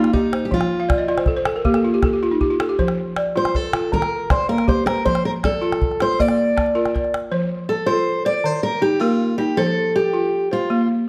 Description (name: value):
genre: west african traditional, West African string and xylophone music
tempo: 106 BPM (dotted quarters)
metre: 12/8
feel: straight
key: F mixolydian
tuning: A4 = 440 Hz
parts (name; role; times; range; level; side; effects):
- picked steel-string acoustic guitar; melody; 0.0-10.9 s; Eb4 to D5; -23 LUFS; equal; none
- balafon; arpeggios; 0.0-11.1 s; Eb3 to A5; -23 LUFS; equal; none
- calabash; percussion; 0.0-7.2 s; none; -25 LUFS; equal; none
room: moderate recital hall reverb, RT60 1.4 s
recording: dark, warm production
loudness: -20 LUFS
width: mono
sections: 0.0-7.3 A section; 7.3-11.1 B section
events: balafon fill 0.8-2.8; steel-string acoustic guitar solo 7.3-11.1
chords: 0.0 Eb; 0.5 F5; 1.7 Bb5; 2.8 F; 3.9 Eb; 5.1 F; 6.2 Bb; 7.3 F5; 8.4 Eb5; 9.6 F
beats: | 0.52 1.08 1.65 2.22 | 2.79 3.35 3.92 4.49 | 5.06 5.62 6.19 6.75 | 7.32 7.88 8.45 9.01 | 9.58 10.14 10.70